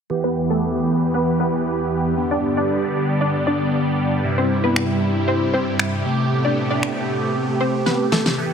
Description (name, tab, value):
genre	dance-pop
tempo	116 BPM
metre	4/4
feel	straight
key	E minor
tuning	A4 = 439 Hz
part	big bright polysynth	accompaniment	0.1-8.5 s	G2 to G4	-21 LUFS	right 1 dB	phaser, low-pass filter
part	supersaw pad	sustained chords	0.1-8.4 s	E2 to D5	-24 LUFS	equal	low-pass filter
part	wide unison pluck	melody	0.2-8.2 s	A3 to D5	-24 LUFS	left 1 dB	low-pass filter, ping-pong delay
part	electronic finger snaps and snare drum	drums	4.8-8.4 s	none	-23 LUFS	left 1 dB	none
room	light reverb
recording	none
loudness	-18 LUFS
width	side -7 dB against mid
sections	0.1-8.4 A section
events	filter sweep 0.1-8.4; drum fill 7.9-8.4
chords	0.1 Em; 2.2 G; 4.2 C/G; 6.1 Am7